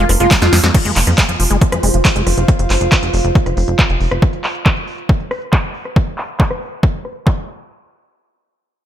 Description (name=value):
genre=psychedelic trance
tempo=138 BPM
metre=4/4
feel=straight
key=F minor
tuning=A4 = 440 Hz
part: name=wide unison lead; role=melody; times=0.0-0.6 s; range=F4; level=-18 LUFS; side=right 2 dB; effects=phaser, sidechain pumping, digital delay
part: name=overtone-sweeping drone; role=sustained chords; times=0.0-0.8 s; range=F3 to Bb3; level=-29 LUFS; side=right 2 dB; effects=none
part: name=liquid acid bass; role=riff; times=0.0-2.4 s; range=F3 to Gb4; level=-22 LUFS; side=left 1 dB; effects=chorus, auto-pan, vintage 12-bit sampler grit, sidechain pumping, ping-pong delay
part: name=plucky analog bass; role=bass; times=0.0-4.2 s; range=F1 to F2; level=-16 LUFS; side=equal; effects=none
part: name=big-room dance drum kit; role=drums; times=0.1-7.7 s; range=crash cymbal, handclaps, hi-hat, rim click, snare drum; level=-18 LUFS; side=equal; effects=overdrive, low-pass filter on hats, low-pass filter on snare, low-pass filter on cymbals, low-pass filter on room
part: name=electronic kick drum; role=drums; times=0.3-7.4 s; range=none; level=-14 LUFS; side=equal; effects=overdrive
part: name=warbly tape-like pad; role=texture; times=1.1-4.2 s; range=F4 to F5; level=-22 LUFS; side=right 2 dB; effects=chorus, built-in reverb, sidechain pumping
room=digital ambience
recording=none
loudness=-12 LUFS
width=side -11 dB against mid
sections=0.7-7.7 A section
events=drum fill 0.3-0.7; filter sweep on drum 0.7-7.7; filter sweep on acid bass 0.7-2.5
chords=0.0 F5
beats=0.31 | 0.74 1.18 1.61 2.05 | 2.48 2.92 3.35 3.79 | 4.22 4.66 5.09 5.53 | 5.96 6.40 6.83 7.27